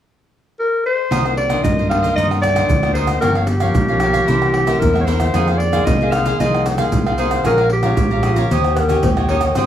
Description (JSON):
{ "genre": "samba and choro", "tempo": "114 BPM", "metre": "4/4", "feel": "straight", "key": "C minor", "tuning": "A4 = 436 Hz", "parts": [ { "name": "growling clarinet", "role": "melody", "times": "0.6-9.3 s", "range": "G4 to F5", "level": "-19 LUFS", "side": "left 1 dB", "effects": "none" }, { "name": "cavaquinho", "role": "accompaniment", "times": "1.1-9.7 s", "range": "Eb4 to Bb5", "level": "-24 LUFS", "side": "right 5 dB", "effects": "none" }, { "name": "nylon-string guitar", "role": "accompaniment", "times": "1.1-9.7 s", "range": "F2 to Ab4", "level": "-23 LUFS", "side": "left 4 dB", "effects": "none" }, { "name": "fingered electric bass", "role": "bass", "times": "1.1-9.7 s", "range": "G1 to G2", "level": "-20 LUFS", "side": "equal", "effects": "none" }, { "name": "egg shaker, surdo, pandeiro and tamborim", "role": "percussion", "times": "1.1-9.7 s", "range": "none", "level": "-20 LUFS", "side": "right 1 dB", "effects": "none" }, { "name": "breathy mellow long shakuhachi", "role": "second line", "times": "8.2-9.7 s", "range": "F4 to Db5", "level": "-21 LUFS", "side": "left 4 dB", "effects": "none" } ], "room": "moderate studio reverb, RT60 0.6 s", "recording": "small room reverb", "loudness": "-14 LUFS", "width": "side -10 dB against mid", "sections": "0.0-1.1 A section; 1.1-9.7 B section", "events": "none", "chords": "0.0 N.C.; 1.1 Cm9; 3.2 Gm7b5; 4.3 C7b9; 5.3 Fm7; 7.5 Bbm7; 8.5 Eb7", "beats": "0.06 0.59 | 1.11 1.64 2.17 2.70 | 3.23 3.75 4.28 4.81 | 5.34 5.87 6.40 6.92 | 7.45 7.98 8.51 9.04 | 9.57" }